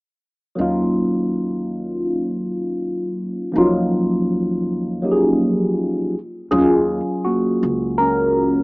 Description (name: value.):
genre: R&B, neo-soul.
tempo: 81 BPM.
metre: 4/4.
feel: swing 56% on 16ths.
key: Eb minor.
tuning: A4 = 441 Hz.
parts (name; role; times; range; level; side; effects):
tine electric piano; accompaniment; 0.6-8.6 s; F3 to Bb4; -17 LUFS; equal; overdrive, phaser.
upright bass; bass; 0.6-8.6 s; Db2 to Eb2; -32 LUFS; equal; none.
room: moderate plate reverb, RT60 3.2 s.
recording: rough home demo mix, small speaker sound.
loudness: -17 LUFS.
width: side -26 dB against mid.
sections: 0.6-6.5 A section; 6.5-8.6 B section.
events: tine electric piano solo 6.5-8.6.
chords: 0.6 Ebm7; 6.1 N.C.; 6.5 Ebm7.